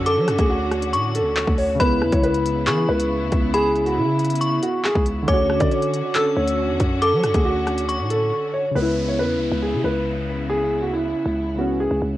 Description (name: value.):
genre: hip hop, drill.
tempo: 138 BPM.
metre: 4/4.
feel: half-time.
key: C# phrygian.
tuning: A4 = 440 Hz.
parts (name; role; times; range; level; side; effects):
dark grand piano; melody; 0.0-12.0 s; E4 to D5; -22 LUFS; right 1 dB; plate reverb.
metallic FM bell; second line; 0.0-8.3 s; B5 to E6; -27 LUFS; left 2 dB; chorus, cassette tape, plate reverb, tape echo.
warbly lo-fi synth keys; accompaniment; 0.0-12.2 s; C#3 to F#4; -26 LUFS; equal; chorus, cassette tape.
bright chamber string section; sustained chords; 0.0-12.2 s; C#3 to F#4; -31 LUFS; left 1 dB; cassette tape.
growling 808-style bass; bass; 0.0-12.2 s; C#2 to F#3; -25 LUFS; equal; none.
drill drum kit; drums; 0.1-8.2 s; handclaps, hi-hat, kick drum, rim click; -23 LUFS; equal; cassette tape.
downlifter; sound effects; 8.8-12.2 s; none; -37 LUFS; equal; none.
room: moderate studio reverb, RT60 0.5 s.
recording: home recording on cassette.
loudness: -18 LUFS.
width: side -14 dB against mid.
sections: 0.0-8.8 A section; 8.8-12.2 B section.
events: drums muted 8.3-8.8.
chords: 0.0 Dmaj7; 1.8 C#m7; 5.3 Dmaj7; 8.8 C#m7.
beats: | 0.06 0.50 0.93 1.37 | 1.80 2.23 2.67 3.10 | 3.54 3.97 4.41 4.84 | 5.28 5.71 6.15 6.58 | 7.02 7.45 7.89 8.32 | 8.76 9.19 9.63 10.06 | 10.50 10.93 11.37 11.80.